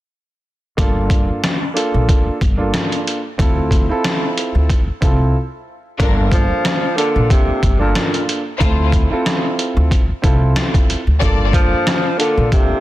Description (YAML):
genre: hip hop, boom-bap hip-hop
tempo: 92 BPM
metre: 4/4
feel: swing 55% on 16ths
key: G minor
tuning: A4 = 440 Hz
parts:
  - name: dark baby grand piano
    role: accompaniment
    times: 0.8-12.8 s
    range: Bb3 to A4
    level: -21 LUFS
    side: right 2 dB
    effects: cassette tape, high-pass filter, low-pass filter
  - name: upright bass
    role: bass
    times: 0.8-12.5 s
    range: G1 to D2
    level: -17 LUFS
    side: equal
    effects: none
  - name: trip hop sampler-style drum kit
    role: drums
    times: 0.8-12.7 s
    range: hi-hat, kick drum, rim click, snare drum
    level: -16 LUFS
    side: equal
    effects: overdrive, vintage 12-bit sampler grit
  - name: dark studio string section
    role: stabs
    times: 6.0-11.5 s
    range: F3 to D5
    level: -24 LUFS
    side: left 5 dB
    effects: high-pass filter, low-pass filter, ping-pong delay
  - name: breathy tenor saxophone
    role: melody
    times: 6.3-12.8 s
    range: Bb2 to F3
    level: -19 LUFS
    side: left 1 dB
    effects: high-pass filter, low-pass filter, ping-pong delay
room: small room ambience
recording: dense, heavily limited modern master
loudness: -14 LUFS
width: side -15 dB against mid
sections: 0.8-6.0 A section; 6.0-12.8 B section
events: break 5.3-6.0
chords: 0.8 Gm9; 3.4 Dm9; 6.0 Gm9; 8.6 Dm9; 11.2 Gm9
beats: | 0.78 1.43 2.08 2.73 | 3.39 4.04 4.69 5.34 | 6.00 6.65 7.30 7.95 | 8.61 9.26 9.91 10.56 | 11.21 11.87 12.52